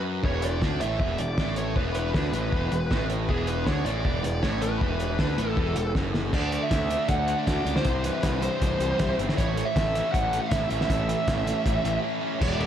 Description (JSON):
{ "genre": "indie rock", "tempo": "158 BPM", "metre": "4/4", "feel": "straight", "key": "unclear", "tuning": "A4 = 439 Hz", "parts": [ { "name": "fuzz guitar", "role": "riff", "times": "0.0-12.7 s", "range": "E2 to F#4", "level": "-30 LUFS", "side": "equal", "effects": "distortion" }, { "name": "fuzz picked electric bass", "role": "bass", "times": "0.2-12.7 s", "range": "E1 to D2", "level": "-29 LUFS", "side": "equal", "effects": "overdrive" }, { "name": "cloth-damped thuddy drum kit", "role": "drums", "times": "0.2-12.7 s", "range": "crash cymbal, hi-hat, kick drum, ride cymbal, snare drum", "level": "-28 LUFS", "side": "equal", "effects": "none" }, { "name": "bluesy overdriven lead guitar", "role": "melody", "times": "0.3-12.7 s", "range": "G#4 to F#5", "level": "-29 LUFS", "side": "right 1 dB", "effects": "distortion, analog delay" } ], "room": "moderate lush hall reverb, RT60 2.0 s", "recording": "dreamy mix soaked in reverb", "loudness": "-23 LUFS", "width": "side -10 dB against mid", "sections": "0.0-6.3 A section; 6.3-12.4 B section", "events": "drum fill 6.0-6.3; break 12.0-12.4", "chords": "0.0 E5; 6.3 D; 7.9 C; 9.4 A" }